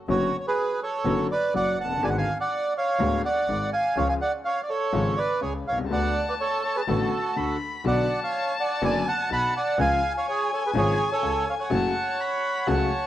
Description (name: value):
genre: tango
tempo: 124 BPM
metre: 4/4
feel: rubato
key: unclear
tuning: A4 = 440 Hz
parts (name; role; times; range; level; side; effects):
- bandoneon; melody; 0.1-13.1 s; F#4 to B5; -25 LUFS; right 2 dB; cassette tape
- clear upright piano; accompaniment; 0.1-12.9 s; D1 to F#4; -29 LUFS; left 5 dB; cassette tape
- warm double bass; bass; 0.1-12.9 s; F#1 to D2; -30 LUFS; right 1 dB; none
- warm violin; second line; 5.9-13.1 s; G#5 to B5; -30 LUFS; left 6 dB; cassette tape
room: light reverb, studio ambience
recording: home recording on cassette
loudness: -22 LUFS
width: side -12 dB against mid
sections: 0.0-13.1 A section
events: none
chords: 0.1 Bmadd9/F#; 2.0 G#m7b5; 4.0 C#; 5.9 D6; 7.9 Bm; 9.8 C#; 11.7 F#m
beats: | 0.09 0.57 1.06 1.54 | 2.02 2.51 2.99 3.48 | 3.97 4.45 4.93 5.42 | 5.91 6.40 6.88 7.37 | 7.85 8.34 8.82 9.30 | 9.78 10.26 10.74 11.23 | 11.71 12.19 12.68